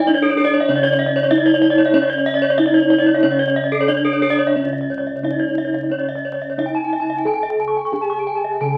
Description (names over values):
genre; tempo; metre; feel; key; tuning
Balinese gamelan; 89-98 BPM; 4/4; straight; C# pelog; A4 = 439 Hz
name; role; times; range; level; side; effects
gamelan-type bronze metallophone; melody; 0.0-8.8 s; C#4 to A4-40c; -21 LUFS; equal; none
gamelan-type bronze metallophone; arpeggios; 0.0-8.7 s; A4-40c to C#6; -24 LUFS; equal; none
gamelan-type bossed gongs; bass; 0.0-8.8 s; C#2 to A4-40c; -29 LUFS; equal; none
gamelan-type bronze metallophone; arpeggios; 0.1-8.8 s; A4-40c to C#6; -23 LUFS; equal; none
room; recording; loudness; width
moderate studio ambience, RT60 0.5 s; very old 78 rpm record, vinyl crackle; -18 LUFS; mono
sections
0.0-4.6 A section; 4.6-8.8 B section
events
none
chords
none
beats
0.07 0.69 1.31 | 1.94 2.58 3.23 3.89 | 4.56 5.23 5.91 6.58 | 7.26 7.93 8.61